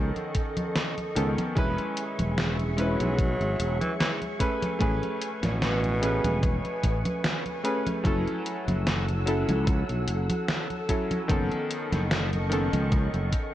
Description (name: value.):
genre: vaporwave.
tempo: 74 BPM.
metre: 4/4.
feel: swing 54% on 16ths.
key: E major.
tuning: A4 = 436 Hz.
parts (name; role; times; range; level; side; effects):
warm electric grand piano; accompaniment; 0.0-13.5 s; D#3 to B4; -30 LUFS; equal; lush chorus, analog delay.
soft string machine; sustained chords; 0.0-13.5 s; G#4 to E6; -35 LUFS; equal; ensemble chorus.
sustaining fretless electric bass; bass; 0.0-13.3 s; E1 to C#2; -28 LUFS; equal; wide subtle chorus.
gated 80s digital drum machine; drums; 0.2-13.5 s; congas, hi-hat, snare drum; -31 LUFS; equal; gated reverb, gated reverb snare, small room reverb.
electronic kick drum; drums; 0.3-13.5 s; none; -27 LUFS; equal; small room reverb.
raspy tenor saxophone; melody; 2.8-6.6 s; B2 to F#3; -33 LUFS; equal; vintage 12-bit sampler grit, tape echo.
room: light reverb.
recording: cassette tape.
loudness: -24 LUFS.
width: side -13 dB against mid.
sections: 0.0-13.5 A section.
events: none.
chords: 0.0 B9; 1.6 E6; 4.4 Amaj9; 8.1 F#m7; 11.3 B9/F#.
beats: 0.76 | 1.57 2.38 3.19 4.00 | 4.81 5.62 6.43 7.24 | 8.05 8.86 9.67 10.48 | 11.29 12.11 12.92.